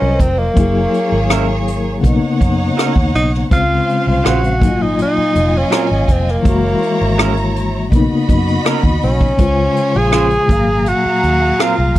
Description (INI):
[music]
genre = lush 1970s-style soul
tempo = 82 BPM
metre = 4/4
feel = straight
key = unclear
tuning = A4 = 436 Hz
[part]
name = breathy tenor saxophone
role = melody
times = 0.0-12.0 s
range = Bb3 to Ab4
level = -17 LUFS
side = equal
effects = none
[part]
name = warm symphonic violin section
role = second line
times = 0.0-12.0 s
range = Bb3 to Cb6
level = -23 LUFS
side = right 2 dB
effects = none
[part]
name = mellow reed electric piano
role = accompaniment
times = 0.0-12.0 s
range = Bb2 to F5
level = -18 LUFS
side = left 4 dB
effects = fast tremolo
[part]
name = vintage muted fingered electric bass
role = bass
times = 0.0-12.0 s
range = F1 to Gb2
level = -18 LUFS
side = equal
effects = none
[part]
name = vintage brush drum kit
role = drums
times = 0.2-12.0 s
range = hi-hat, kick drum, rim click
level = -15 LUFS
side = equal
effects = none
[part]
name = electric guitar through a small old amp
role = riff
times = 1.3-11.7 s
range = Gb3 to C5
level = -19 LUFS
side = right 6 dB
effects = none
[sound]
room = little or no reverb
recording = dry, close 1970s-style studio recording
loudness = -12 LUFS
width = side -15 dB against mid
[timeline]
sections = 0.0-12.0 A section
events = none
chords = 0.0 Ab13 (rootless); 0.6 Gb9; 2.0 Cbmaj9; 3.5 Dbmaj7; 4.6 Ab7sus2; 6.4 Gb9; 7.9 Cbmaj9; 9.4 Dbmaj7; 10.5 Ab13